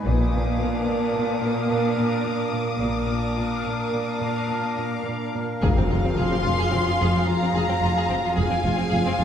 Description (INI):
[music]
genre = cinematic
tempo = 109 BPM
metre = 5/4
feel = straight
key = unclear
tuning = A4 = 441 Hz
[part]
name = bubbling stepped-filter texture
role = sustained chords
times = 0.0-9.2 s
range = D4 to F5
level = -27 LUFS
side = right 2 dB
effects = chorus, built-in reverb
[part]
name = rich studio cello section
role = bass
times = 0.0-9.2 s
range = F2 to Bb2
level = -27 LUFS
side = equal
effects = none
[part]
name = rich studio double bass section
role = bass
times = 0.0-9.2 s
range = F1 to Bb1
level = -28 LUFS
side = equal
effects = none
[part]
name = rich studio cello section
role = riff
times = 0.1-9.2 s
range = F2 to F3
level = -29 LUFS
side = equal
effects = none
[part]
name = warm studio violin section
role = texture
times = 0.1-5.3 s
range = D6 to Eb6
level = -34 LUFS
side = left 5 dB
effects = none
[part]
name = rich studio violin section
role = second line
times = 5.6-9.2 s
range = C4 to F5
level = -27 LUFS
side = equal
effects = none
[part]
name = impact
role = sound effects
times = 5.6-8.4 s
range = none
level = -28 LUFS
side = left 2 dB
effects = none
[part]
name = rich studio violin section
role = melody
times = 6.2-9.2 s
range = Ab5 to C6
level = -28 LUFS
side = left 3 dB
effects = none
[sound]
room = wet recital hall reverb, RT60 1.5 s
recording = recorded in a church or concert hall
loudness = -21 LUFS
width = side -8 dB against mid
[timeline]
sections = 0.0-5.6 A section; 5.6-9.2 B section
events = impact 5.6-8.4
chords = 0.1 Bb; 5.6 Fm